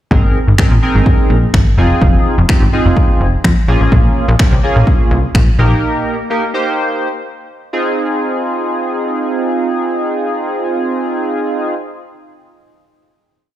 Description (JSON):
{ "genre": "dance-pop", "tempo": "126 BPM", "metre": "4/4", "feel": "straight", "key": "F minor", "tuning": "A4 = 438 Hz", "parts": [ { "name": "chorused polysynth", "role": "accompaniment", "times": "0.1-11.7 s", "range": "Bb3 to C5", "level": "-16 LUFS", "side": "right 1 dB", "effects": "sidechain pumping" }, { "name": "plucky analog bass", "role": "bass", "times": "0.1-5.7 s", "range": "F1 to F2", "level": "-12 LUFS", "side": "equal", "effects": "sidechain pumping" }, { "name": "punchy analog drum machine", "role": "drums", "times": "0.1-5.5 s", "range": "finger snaps, kick drum", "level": "-12 LUFS", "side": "equal", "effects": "none" } ], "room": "light reverb, digital ambience", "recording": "played on a big sound system in a bare room, large studio reverb", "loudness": "-11 LUFS", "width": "side -12 dB against mid", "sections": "0.1-7.7 verse; 7.7-11.5 final chord", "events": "none", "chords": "0.1 Abadd9; 1.8 Fm7; 3.7 Bbm7; 5.6 Eb/Bb; 7.7 Fm7", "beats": "| 0.11 0.59 1.06 1.54 | 2.02 2.49 2.97 3.44 | 3.92 4.40 4.87 5.35 | 5.83 6.30 6.78 7.25 | 7.73 8.21 8.68 9.16 | 9.63 10.11 10.59 11.06" }